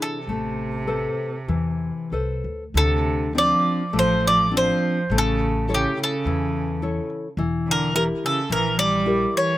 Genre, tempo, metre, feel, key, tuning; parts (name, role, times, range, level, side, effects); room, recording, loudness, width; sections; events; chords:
fado-style ballad; 92-108 BPM; 4/4; rubato; D harmonic minor; A4 = 440 Hz
bowl-back mandolin; melody; 0.0-9.6 s; G4 to D5; -22 LUFS; equal
clear cello; second line; 0.0-9.6 s; C3 to G3; -27 LUFS; right 3 dB
nylon-string guitar; accompaniment; 0.0-9.5 s; D3 to C#5; -26 LUFS; left 3 dB
upright bass; bass; 0.3-9.2 s; E1 to E2; -26 LUFS; equal
little or no reverb; recorded outdoors, with no room sound; -20 LUFS; side -15 dB against mid
0.0-2.8 A section; 2.8-9.6 B section
0.3 Amadd9; 2.8 Dm7; 5.1 A; 7.4 Edim